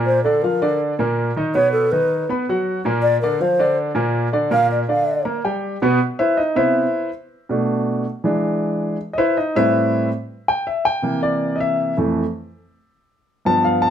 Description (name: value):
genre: jazz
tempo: 161 BPM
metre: 4/4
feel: straight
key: C major from 6.0 s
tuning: A4 = 443 Hz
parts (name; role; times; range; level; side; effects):
- warm grand piano; accompaniment; 0.0-13.9 s; F2 to B5; -18 LUFS; equal; none
- wooden-headed alto flute; melody; 0.1-5.2 s; A4 to F5; -19 LUFS; equal; plate reverb
room: moderate club reverb, RT60 0.7 s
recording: none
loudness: -17 LUFS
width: side -9 dB against mid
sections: 0.0-6.0 A section; 6.0-13.9 A section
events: alto flute solo 0.0-6.0; grand piano solo 6.0-13.9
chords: 0.1 Bbadd11; 1.5 B; 3.0 Bbadd9; 4.5 Bb; 5.3 Gm; 6.0 Cmaj7; 7.5 Bm7; 8.2 E7; 9.0 Am9; 10.5 C9; 12.0 Fmaj7